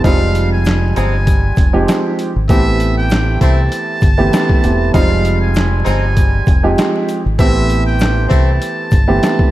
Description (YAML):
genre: hip hop, boom-bap hip-hop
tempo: 98 BPM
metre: 4/4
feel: swing 55% on 16ths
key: A minor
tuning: A4 = 439 Hz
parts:
  - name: trumpet with metal mute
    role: melody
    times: 0.0-9.5 s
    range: E5 to A5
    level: -22 LUFS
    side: equal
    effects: ping-pong delay
  - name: warm baby grand piano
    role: accompaniment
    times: 0.0-9.5 s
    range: E3 to G4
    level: -17 LUFS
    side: right 2 dB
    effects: cassette tape
  - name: warm horn section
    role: stabs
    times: 0.0-8.5 s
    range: Ab3 to E4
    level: -25 LUFS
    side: left 2 dB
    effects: ping-pong delay
  - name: deep dub fingered electric bass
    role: bass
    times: 0.0-9.2 s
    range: E1 to C2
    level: -16 LUFS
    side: equal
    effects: none
  - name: boom bap sampler-style drum kit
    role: drums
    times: 0.0-9.5 s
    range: handclaps, hi-hat, kick drum, snare drum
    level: -14 LUFS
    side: equal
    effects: none
  - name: egg shaker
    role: percussion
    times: 0.0-9.4 s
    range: none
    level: -42 LUFS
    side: left 6 dB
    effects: none
room: light reverb, studio reverb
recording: vinyl crackle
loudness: -11 LUFS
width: side -15 dB against mid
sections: 0.0-9.5 A section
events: none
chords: 0.0 Fm7; 2.5 Am7; 4.9 Fm7; 7.4 Am7